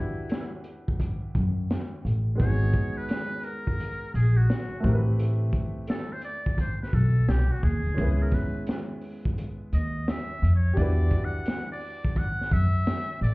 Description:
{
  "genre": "hip hop, jazz-hop",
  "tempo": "86 BPM",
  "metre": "4/4",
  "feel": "swing 65% on 16ths",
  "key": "unclear",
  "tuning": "A4 = 440 Hz",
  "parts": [
    { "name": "trumpet with metal mute", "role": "melody", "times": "0.0-13.3 s", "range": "E4 to F#5", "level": "-34 LUFS", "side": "equal", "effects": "plate reverb" },
    { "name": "clear grand piano", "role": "accompaniment", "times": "0.0-13.3 s", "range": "G#3 to B4", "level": "-35 LUFS", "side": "right 1 dB", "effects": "plate reverb" },
    { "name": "crunchy breakbeat drum kit", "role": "drums", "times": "0.3-13.3 s", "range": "hi-hat, kick drum, snare drum", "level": "-29 LUFS", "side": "equal", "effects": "none" },
    { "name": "upright bass", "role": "bass", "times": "1.4-13.3 s", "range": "G#1 to F#2", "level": "-23 LUFS", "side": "equal", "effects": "none" }
  ],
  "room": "little or no reverb",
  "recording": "heard muffled through a wall, club reverb, EQ",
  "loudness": "-24 LUFS",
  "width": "side -23 dB against mid",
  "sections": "0.0-13.3 A section",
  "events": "muted trumpet solo 0.0-13.3",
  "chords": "0.0 Em9; 2.4 G#m9; 4.8 Am9; 8.0 C#m7; 10.8 Em9"
}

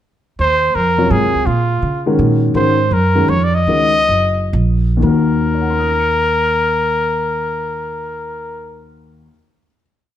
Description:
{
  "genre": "modal jazz",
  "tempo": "116-167 BPM",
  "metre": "3/4",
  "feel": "swing 65% on 8ths",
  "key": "Eb dorian",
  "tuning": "A4 = 441 Hz",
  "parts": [
    { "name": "clear trumpet", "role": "melody", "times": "0.4-8.9 s", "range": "F4 to Eb5", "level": "-16 LUFS", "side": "equal", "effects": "none" },
    { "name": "upright bass", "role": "bass", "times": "0.4-9.3 s", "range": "Gb1 to Db3", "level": "-18 LUFS", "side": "right 1 dB", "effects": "none" },
    { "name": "dark upright piano", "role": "accompaniment", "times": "1.0-9.8 s", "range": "Eb2 to Db7", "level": "-18 LUFS", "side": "left 2 dB", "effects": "none" }
  ],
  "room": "moderate large studio reverb, RT60 1.3 s",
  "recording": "none",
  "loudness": "-13 LUFS",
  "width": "side -11 dB against mid",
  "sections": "0.4-5.0 A section; 5.0-8.1 final chord",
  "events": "slowing down 2.5-5.0",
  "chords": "0.4 Eb13sus4; 2.5 Ab13sus4; 5.0 Ebm"
}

